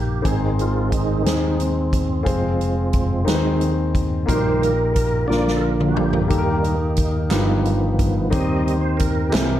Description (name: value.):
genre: slow gospel.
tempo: 59 BPM (dotted quarters).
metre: 6/8.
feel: straight.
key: Eb major.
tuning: A4 = 441 Hz.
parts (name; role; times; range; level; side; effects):
warm concert grand piano; accompaniment; 0.0-9.6 s; G2 to C5; -23 LUFS; left 2 dB; none.
tonewheel organ; sustained chords; 0.0-9.6 s; D3 to Eb5; -24 LUFS; right 4 dB; fast rotary speaker, chorus vibrato.
fingered electric bass; bass; 0.0-9.6 s; F1 to Eb2; -22 LUFS; equal; none.
swinging big-band drum kit; drums; 0.2-9.5 s; hi-hat, kick drum, snare drum, toms; -24 LUFS; equal; none.
group handclap; percussion; 7.3-9.6 s; none; -33 LUFS; right 3 dB; none.
room: light reverb, small room reverb.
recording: dark, warm production.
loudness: -17 LUFS.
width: side -12 dB against mid.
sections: 0.0-9.6 A section.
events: tonewheel organ solo 0.0-9.6; drum fill 5.3-6.3.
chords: 0.2 Ab; 2.3 Fm; 3.3 Ab/Eb; 4.3 Eb/Bb; 5.3 Bb; 6.3 Eb; 7.3 Gaug7; 8.3 Cm/Eb.